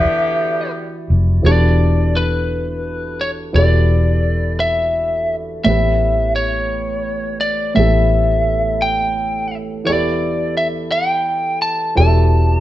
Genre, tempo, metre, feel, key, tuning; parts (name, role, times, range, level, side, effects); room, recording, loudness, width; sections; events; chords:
slow six-eight R&B; 57 BPM (dotted quarters); 6/8; straight; E minor; A4 = 440 Hz
lightly driven lead guitar; melody; 0.0-12.6 s; B4 to A5; -18 LUFS; left 1 dB
dark grand piano; accompaniment; 0.0-12.6 s; A2 to E5; -21 LUFS; right 2 dB
clear horn section; stabs; 0.0-1.1 s; D3 to G4; -23 LUFS; left 2 dB
vintage muted fingered electric bass; bass; 0.1-12.6 s; E1 to A1; -16 LUFS; equal
moderate stone room reverb, RT60 1.1 s; band playing live in one room, nothing above 8.0 kHz; -14 LUFS; side -14 dB against mid
0.0-1.4 A section; 1.4-12.6 B section
0.0 Em9; 1.4 Em11; 5.7 A9; 9.9 Em11